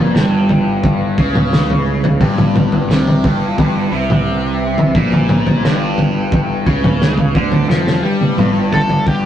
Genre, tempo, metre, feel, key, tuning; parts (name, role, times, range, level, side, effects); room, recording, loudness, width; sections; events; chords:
psychedelic rock; 87 BPM; 4/4; straight; G lydian; A4 = 442 Hz
mellow tonewheel organ; sustained chords; 0.0-9.3 s; G3 to F#5; -25 LUFS; right 2 dB; slow rotary speaker
overdriven electric guitar; riff; 0.0-9.3 s; G2 to G3; -17 LUFS; left 1 dB; phaser
fuzz picked electric bass; bass; 0.0-9.3 s; G1 to G2; -21 LUFS; equal; overdrive
cloth-damped thuddy drum kit; drums; 0.2-9.2 s; kick drum, snare drum, toms; -15 LUFS; equal
octave-fuzz lead guitar; melody; 8.7-9.3 s; G4 to A4; -17 LUFS; equal; distortion
light reverb; rough rehearsal-room recording, tube saturation; -12 LUFS; side -10 dB against mid
0.0-9.1 A section
drum fill 7.7-9.1
0.0 G